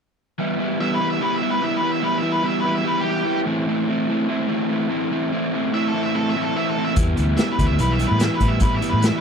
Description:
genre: blues rock power trio and southern rock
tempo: 146 BPM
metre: 4/4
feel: straight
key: E minor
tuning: A4 = 439 Hz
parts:
  - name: crunchy overdriven guitar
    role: riff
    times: 0.4-9.2 s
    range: A2 to E4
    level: -21 LUFS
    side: equal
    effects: none
  - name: octave-fuzz lead guitar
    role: melody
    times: 0.8-9.2 s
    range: G4 to E5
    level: -24 LUFS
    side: right 2 dB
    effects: distortion
  - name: vintage muted fingered electric bass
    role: bass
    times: 7.0-9.1 s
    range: B1 to A2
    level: -21 LUFS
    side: equal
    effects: none
  - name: vintage drum kit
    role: drums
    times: 7.0-9.1 s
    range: hi-hat, kick drum, snare drum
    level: -22 LUFS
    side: equal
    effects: none
room: light reverb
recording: none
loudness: -18 LUFS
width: side -6 dB against mid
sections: 0.4-9.2 A section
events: none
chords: 0.4 Em; 3.5 Am; 7.0 Em

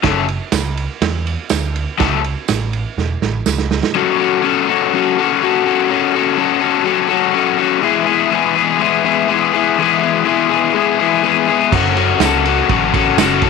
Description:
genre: garage rock duo or trio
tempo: 124 BPM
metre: 4/4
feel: straight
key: F# minor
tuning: A4 = 440 Hz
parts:
  - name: overdriven electric guitar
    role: riff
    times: 0.0-13.5 s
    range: F#2 to A4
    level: -13 LUFS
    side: left 11 dB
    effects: none
  - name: overdriven picked electric bass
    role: bass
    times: 0.0-3.8, 11.7-13.5 s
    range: E1 to E2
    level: -20 LUFS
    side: right 2 dB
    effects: none
  - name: vintage drum kit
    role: drums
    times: 0.0-3.9, 11.7-13.5 s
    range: crash cymbal, kick drum, ride cymbal, snare drum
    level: -19 LUFS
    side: right 8 dB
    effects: none
  - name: tambourine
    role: percussion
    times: 0.5-3.6, 12.2-13.3 s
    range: none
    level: -28 LUFS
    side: right 15 dB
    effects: none
room: light reverb, small room ambience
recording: 1960s-style stereo with parts hard left and right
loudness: -13 LUFS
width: side -4 dB against mid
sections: 0.0-4.0 A section; 4.0-13.5 B section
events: drum fill 3.0-4.0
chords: 0.0 F#m; 7.8 E; 11.7 F#m

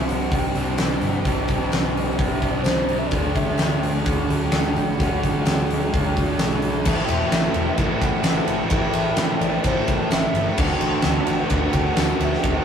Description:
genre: rock, shoegaze and dream pop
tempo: 129 BPM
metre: 4/4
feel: straight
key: unclear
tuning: A4 = 440 Hz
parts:
  - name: reedy FM lead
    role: melody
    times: 0.0-12.6 s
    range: C5 to A5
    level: -30 LUFS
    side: equal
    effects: chorus, phaser
  - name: granular cloud pad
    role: sustained chords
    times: 1.7-6.8 s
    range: F#4 to C6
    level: -37 LUFS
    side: right 1 dB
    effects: none
  - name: raw garage guitar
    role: riff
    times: 0.0-12.6 s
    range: A2 to G4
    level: -24 LUFS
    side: right 3 dB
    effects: overdrive
  - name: sludgy distorted guitar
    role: riff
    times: 0.0-12.6 s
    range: A2 to A4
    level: -30 LUFS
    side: equal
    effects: overdrive
  - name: thick fuzz guitar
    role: riff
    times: 0.0-12.6 s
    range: A2 to D4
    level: -29 LUFS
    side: left 5 dB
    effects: distortion
  - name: vintage muted picked electric bass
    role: bass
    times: 0.0-12.6 s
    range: E1 to A2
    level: -27 LUFS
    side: equal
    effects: none
  - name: huge arena drum kit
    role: drums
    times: 0.1-12.5 s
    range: crash cymbal, hi-hat, kick drum, ride cymbal, snare drum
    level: -23 LUFS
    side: equal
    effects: none
  - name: tambourine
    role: percussion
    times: 0.8-12.1 s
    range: none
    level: -41 LUFS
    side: left 7 dB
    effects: none
room: wet studio reverb, RT60 0.7 s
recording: rough rehearsal-room recording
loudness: -19 LUFS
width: side -8 dB against mid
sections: 0.0-6.9 A section; 6.9-12.6 B section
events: none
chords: 0.0 Csus2; 3.1 D; 6.9 Am; 10.6 D7

